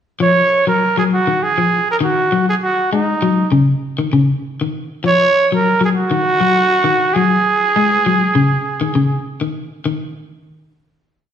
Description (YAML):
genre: afrobeat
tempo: 99 BPM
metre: 4/4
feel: swing 55% on 16ths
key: Eb minor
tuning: A4 = 440 Hz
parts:
  - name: growling trumpet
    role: melody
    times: 0.2-9.3 s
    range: Eb4 to Db5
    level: -14 LUFS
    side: right 2 dB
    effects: none
  - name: electric guitar at the edge of break-up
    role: arpeggios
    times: 0.2-10.0 s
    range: Db3 to Ab3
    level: -17 LUFS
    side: left 4 dB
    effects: none
room: wet stone room reverb, RT60 1.3 s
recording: band playing live in one room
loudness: -13 LUFS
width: side -9 dB against mid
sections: 0.2-9.9 groove; 9.9-11.3 final note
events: none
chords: 0.2 Ebmadd9; 2.6 Dbsus24; 5.0 Ebm; 7.5 Dbsus24; 9.9 N.C.